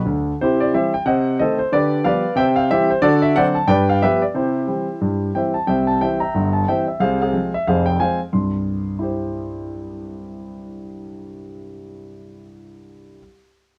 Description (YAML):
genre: jazz, stride piano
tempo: 182 BPM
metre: 4/4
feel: swing 59% on 8ths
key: C major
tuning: A4 = 440 Hz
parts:
  - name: warm concert grand piano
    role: solo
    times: 0.0-13.2 s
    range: F1 to C6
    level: -20 LUFS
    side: equal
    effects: none
room: moderate studio reverb, RT60 0.5 s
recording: worn, warbling old tape, cassette tape, warbly pitch drift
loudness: -19 LUFS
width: mono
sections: 0.0-5.7 A section; 5.7-8.3 B section; 8.3-11.0 C section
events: grand piano fill 0.0-0.4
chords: 0.4 C; 1.1 Cdim7; 1.7 G7/D; 2.4 C; 3.0 D7; 3.7 G7; 4.4 C; 7.0 Fm/C; 8.3 C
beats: 0.07 | 0.39 0.72 1.05 1.38 | 1.71 2.04 2.37 2.70 | 3.03 3.36 3.69 4.02 | 4.35 4.68 5.01 5.34 | 5.67 6.00 6.33 6.67 | 7.00 7.33 7.66 7.99 | 8.32 8.65 8.98 9.31 | 9.65 9.98 10.31 10.64